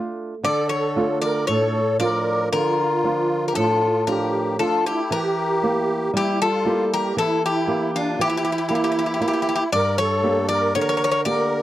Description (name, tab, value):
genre	greek folk, Greek bouzouki band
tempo	116 BPM (eighths)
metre	9/8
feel	straight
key	D harmonic minor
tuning	A4 = 442 Hz
part	flamenco guitar	accompaniment	0.0-11.6 s	G2 to G4	-24 LUFS	right 2 dB	none
part	Greek bouzouki	melody	0.4-11.6 s	F4 to D5	-22 LUFS	left 3 dB	none
part	musette accordion	second line	0.5-11.6 s	D4 to Bb4	-25 LUFS	right 1 dB	none
room	little or no reverb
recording	dry, close 1970s-style studio recording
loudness	-19 LUFS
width	side -14 dB against mid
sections	0.4-11.6 A section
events	none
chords	0.4 Dm; 5.1 Edim; 9.7 Gm